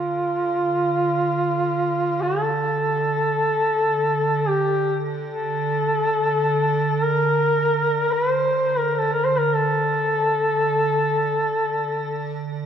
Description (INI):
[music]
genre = caucasian folk, Caucasian lament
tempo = free time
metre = none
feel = none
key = D minor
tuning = A4 = 440 Hz
[part]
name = warm duduk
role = melody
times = 0.0-12.6 s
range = F4 to C5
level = -20 LUFS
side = left 1 dB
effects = none
[part]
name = icy glass pad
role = drone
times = 0.0-12.7 s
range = D3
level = -27 LUFS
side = right 4 dB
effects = chorus, built-in reverb
[sound]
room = wet church reverb, RT60 3.2 s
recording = dark, warm production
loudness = -19 LUFS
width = side -8 dB against mid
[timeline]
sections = 0.0-12.7 A section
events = none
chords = none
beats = free time